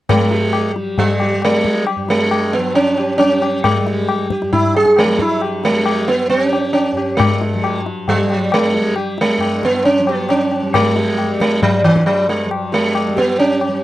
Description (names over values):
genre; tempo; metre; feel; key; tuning
indian classical, Hindustani; 135 BPM; 4/4; straight; G raga marwa; A4 = 438 Hz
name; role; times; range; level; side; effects
sitar; melody; 0.1-13.8 s; E3 to Ab4; -14 LUFS; right 1 dB; none
tanpura; drone; 0.1-13.8 s; G2 to G3; -24 LUFS; left 1 dB; none
tabla; percussion; 0.1-13.8 s; none; -20 LUFS; left 4 dB; none
room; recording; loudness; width
moderate booth ambience, RT60 0.2 s; dry, close 1970s-style studio recording; -13 LUFS; side -15 dB against mid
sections
0.1-13.8 A section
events
none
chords
none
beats
| 0.09 0.54 0.98 1.43 | 1.87 2.31 2.76 3.20 | 3.65 4.09 4.54 4.98 | 5.42 5.87 6.31 6.75 | 7.20 7.64 8.08 8.53 | 8.97 9.41 9.86 10.30 | 10.74 11.18 11.62 12.07 | 12.51 12.95 13.39 13.83